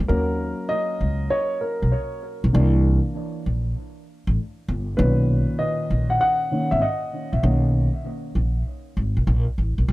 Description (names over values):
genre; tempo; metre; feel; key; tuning
hip hop, jazz-hop; 98 BPM; 4/4; swing 65% on 16ths; B major; A4 = 440 Hz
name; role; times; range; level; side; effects
upright bass; bass; 0.0-9.9 s; G1 to D#2; -20 LUFS; equal; none
dark upright piano; accompaniment; 0.1-7.9 s; A#2 to F#5; -23 LUFS; equal; analog delay
room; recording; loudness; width
light reverb, studio ambience; echo-heavy mix; -20 LUFS; side -18 dB against mid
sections
0.0-9.9 A section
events
upright piano solo 0.0-9.9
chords
0.1 D#m7; 2.5 C9; 5.0 Bmaj9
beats
| 0.09 0.70 1.31 1.92 | 2.54 3.15 3.76 4.37 | 4.99 5.60 6.21 6.82 | 7.43 8.05 8.66 9.27 | 9.88